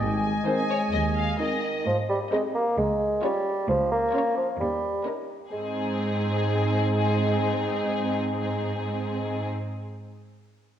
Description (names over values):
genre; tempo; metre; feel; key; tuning
cinematic, playful, whimsical film cue; 131 BPM; 4/4; straight; Ab major; A4 = 442 Hz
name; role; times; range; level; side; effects
clear oboe; second line; 0.0-1.6 s; Eb5; -35 LUFS; left 1 dB; none
concert flute; second line; 0.0-1.6 s; Ab5; -34 LUFS; right 2 dB; none
warm studio violin section; second line; 0.0-9.5 s; Eb4 to Ab5; -36 LUFS; left 3 dB; none
dark French horn section; sustained chords; 0.0-1.6 s; Ab3; -31 LUFS; left 2 dB; none
dark tuba; bass; 0.0-1.3 s; Ab1 to Eb2; -34 LUFS; right 3 dB; none
rich studio cello section; bass; 0.0-9.5 s; Db2 to Ab2; -29 LUFS; right 2 dB; none
warm studio double bass section; bass; 0.0-1.3 s; Ab1 to Eb2; -33 LUFS; right 3 dB; none
rich studio violin section; melody; 0.5-9.5 s; Ab4 to F5; -32 LUFS; left 6 dB; none
mellow clarinet; second line; 0.5-1.6 s; C4; -38 LUFS; equal; none
mellow bassoon; accompaniment; 0.5-9.5 s; Eb3 to Bb3; -27 LUFS; right 1 dB; none
warm studio viola section; accompaniment; 0.5-9.5 s; Eb3 to Eb4; -34 LUFS; right 2 dB; none
room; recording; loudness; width
wet scoring stage reverb, RT60 1.9 s; worn, warbling old tape, cassette tape, warbly pitch drift; -23 LUFS; side -10 dB against mid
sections
0.0-1.9 A section; 1.9-5.5 B section; 5.5-9.2 C section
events
none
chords
0.0 Ab; 2.8 Db; 4.6 Eb7; 5.5 Ab